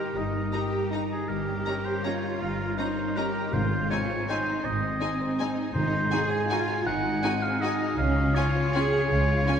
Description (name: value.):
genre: classical, orchestral ballroom waltz.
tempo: 161 BPM.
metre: 3/4.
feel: uneven beats, rubato.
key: Ab major.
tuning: A4 = 440 Hz.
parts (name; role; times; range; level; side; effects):
warm oboe; second line; 0.0-9.6 s; Ab4 to Ab5; -30 LUFS; equal; none.
concert harp; arpeggios; 0.0-9.6 s; G2 to Eb5; -32 LUFS; left 5 dB; none.
warm symphonic cello section; bass; 0.0-9.6 s; C4 to Ab4; -30 LUFS; right 2 dB; none.
warm symphonic double bass section; bass; 0.2-9.4 s; G1 to Db2; -32 LUFS; right 1 dB; none.
rich studio violin section; melody; 0.5-9.6 s; Ab5 to Bb5; -37 LUFS; left 2 dB; none.
warm chamber violin section; second line; 0.5-9.6 s; Eb4 to Gb4; -39 LUFS; left 2 dB; none.
warm symphonic viola section; accompaniment; 0.5-9.6 s; C4 to Eb4; -37 LUFS; right 2 dB; none.
timpani; percussion; 3.5-6.3 s; Ab2; -32 LUFS; equal; none.
room: wet church reverb, RT60 3.0 s.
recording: none.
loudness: -24 LUFS.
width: side -8 dB against mid.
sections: 0.0-9.6 A section.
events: none.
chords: 0.0 Eb/G; 1.3 Eb7/G; 3.5 Ab; 5.8 Ab7; 8.0 Db.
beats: | 0.16 0.54 0.93 | 1.29 1.66 2.05 | 2.41 2.78 3.17 | 3.53 3.90 4.29 | 4.65 5.01 5.39 | 5.75 6.12 6.50 | 6.86 7.23 7.62 | 7.99 8.36 8.74 | 9.10 9.47.